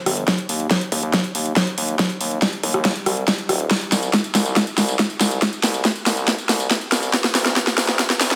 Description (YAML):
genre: uplifting trance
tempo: 140 BPM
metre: 4/4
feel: straight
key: unclear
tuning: A4 = 440 Hz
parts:
  - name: gritty driven synth bass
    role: bass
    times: 0.1-8.4 s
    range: Eb1 to Eb2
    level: -27 LUFS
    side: equal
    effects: tube saturation, sidechain pumping, high-pass filter
  - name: big-room dance drum kit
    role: drums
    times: 0.1-8.4 s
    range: hi-hat, rim click, snare drum, tambourine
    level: -21 LUFS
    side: equal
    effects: sidechain pumping on hats, sidechain pumping on perc
  - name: electronic kick drum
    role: drums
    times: 0.3-8.1 s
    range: none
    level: -29 LUFS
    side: equal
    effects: high-pass filter on kick, high-pass filter on room
room: moderate lush hall reverb, RT60 1.9 s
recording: high-pass filter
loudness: -20 LUFS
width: mono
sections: 0.0-8.4 A section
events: build-up 0.0-8.4; drum fill 0.0-8.4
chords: none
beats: | 0.28 0.71 1.14 1.56 | 1.99 2.42 2.85 3.28 | 3.71 4.13 4.56 4.99 | 5.42 5.85 6.28 6.71 | 7.13 7.56 7.99